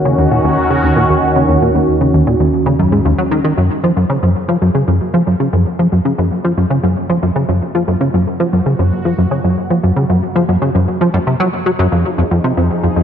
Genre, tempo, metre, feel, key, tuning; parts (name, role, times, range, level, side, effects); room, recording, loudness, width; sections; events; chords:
ambient, sequencer-driven space music; 115 BPM; 4/4; straight; Gb major; A4 = 441 Hz
sweeping resonant pad; sustained chords; 0.0-13.0 s; Eb3 to Ab4; -18 LUFS; right 1 dB; chorus
analog drone; bass; 0.0-13.0 s; Eb2 to Gb2; -26 LUFS; equal
plucky analog bass; riff; 0.1-13.0 s; Eb2 to Gb3; -13 LUFS; equal; analog chorus, tape echo
soft round pluck; arpeggios; 3.6-13.0 s; barely audible
wet lush hall reverb, RT60 2.6 s; dark, warm production; -11 LUFS; side -8 dB against mid
0.0-3.6 A section; 3.6-13.0 B section
filter sweep on analog synth bass 0.0-3.6; fade-in on analog synth pad 3.6-13.0
0.0 Ebm7; 3.6 Gbadd9; 11.9 Fm7